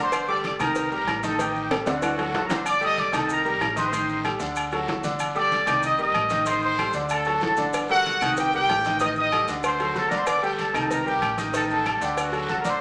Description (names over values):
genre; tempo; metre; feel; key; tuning
latin, salsa; 189 BPM; 4/4; straight; G harmonic minor; A4 = 440 Hz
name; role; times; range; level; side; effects
bright trumpet section; melody; 0.0-12.8 s; F#4 to Eb6; -26 LUFS; equal; none
bright grand piano; accompaniment; 0.0-12.8 s; D3 to Eb5; -30 LUFS; equal; none
fingered electric bass; bass; 0.0-12.8 s; G1 to D2; -40 LUFS; equal; none
agogo bells and timbales; percussion; 0.1-12.5 s; none; -33 LUFS; equal; none
claves; percussion; 0.1-12.3 s; none; -40 LUFS; equal; none
congas; percussion; 0.1-12.8 s; none; -40 LUFS; equal; none
cowbell and bongos; percussion; 0.1-2.7, 7.7-12.8 s; none; -37 LUFS; equal; none
guiro; percussion; 0.1-12.8 s; none; -42 LUFS; equal; none
maracas; percussion; 0.1-12.8 s; none; -44 LUFS; equal; none
room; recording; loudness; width
wet large studio reverb, RT60 0.9 s; none; -24 LUFS; mono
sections
0.0-2.7 A section; 2.7-12.8 A section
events
drum fill 1.7-2.7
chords
0.1 Gmadd9; 0.8 Cm7; 1.4 Ebmaj7#11/A; 2.0 D; 2.7 Gsus2; 3.3 Cm7; 3.9 Am7b5; 4.6 D; 5.2 Gsus2; 5.8 Cm7; 6.5 Am7b5; 7.1 D; 7.7 Gmadd9; 8.4 Cm7; 9.0 Ebmaj7#11/A; 9.6 D7; 10.3 Gsus2; 10.9 Cm7; 11.5 Ebmaj7#11/A; 12.2 D7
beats
| 0.12 0.44 0.76 1.07 | 1.39 1.71 2.03 2.34 | 2.66 2.98 3.30 3.61 | 3.93 4.25 4.56 4.88 | 5.20 5.51 5.83 6.15 | 6.46 6.78 7.10 7.42 | 7.73 8.05 8.37 8.68 | 9.00 9.32 9.63 9.95 | 10.27 10.59 10.90 11.22 | 11.54 11.86 12.17 12.49